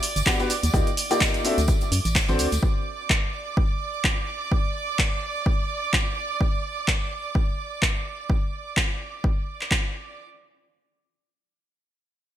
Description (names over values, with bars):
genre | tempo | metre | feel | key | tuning
piano house | 127 BPM | 4/4 | swing 57% on 16ths | unclear | A4 = 440 Hz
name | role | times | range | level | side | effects
rich chamber violin section | sustained chords | 0.0-10.2 s | D5 to D6 | -31 LUFS | right 6 dB | sidechain pumping
gated 80s drum kit | drums | 0.0-2.6 s | hi-hat, snare drum | -36 LUFS | right 3 dB | none
punchy analog drum machine | drums | 0.0-9.8 s | handclaps, hi-hat, shaker | -25 LUFS | equal | gated reverb
organ-like FM bass | bass | 0.2-2.6 s | G1 to F#2 | -24 LUFS | equal | sidechain pumping
tambourine | percussion | 0.2-2.6 s | none | -36 LUFS | left 7 dB | none
clear upright piano | riff | 0.3-2.5 s | Bb3 to F#5 | -26 LUFS | left 2 dB | sidechain pumping, ping-pong delay
electronic kick drum | drums | 0.3-9.8 s | none | -24 LUFS | equal | none
room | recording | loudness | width
light reverb, small room ambience | bright 1980s-style digital production | -22 LUFS | side -12 dB against mid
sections
0.0-10.2 A section; 10.2-12.4 B section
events
none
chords
0.5 Ebmaj9; 1.4 D7; 2.6 N.C.